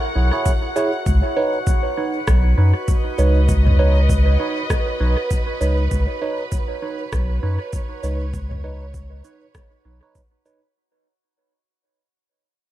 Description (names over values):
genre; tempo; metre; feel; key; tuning
ambient dub; 99 BPM; 4/4; swing 58% on 16ths; unclear; A4 = 439 Hz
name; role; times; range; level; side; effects
dark symphonic string section; sustained chords; 0.0-10.8 s; A#4 to F#5; -29 LUFS; right 2 dB; none
drifting glass-harmonics texture; texture; 0.0-10.8 s; F#4 to F#5; -31 LUFS; left 2 dB; chorus, built-in reverb
bright tine electric piano; stabs; 0.2-10.6 s; D#4 to C#5; -25 LUFS; right 3 dB; phaser, dub echo
warm sub bass; bass; 0.2-10.0 s; B1 to F#2; -16 LUFS; equal; none
electronic kick drum; drums; 0.5-10.3 s; none; -21 LUFS; equal; overdrive
organic electronic drum kit; drums; 0.5-10.6 s; rim click, shaker, toms; -31 LUFS; right 1 dB; dub echo
room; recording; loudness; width
digital ambience; dark, warm production; -17 LUFS; side -14 dB against mid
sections
0.0-10.8 A section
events
fade-out 4.3-10.8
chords
0.0 C#m; 1.1 Badd9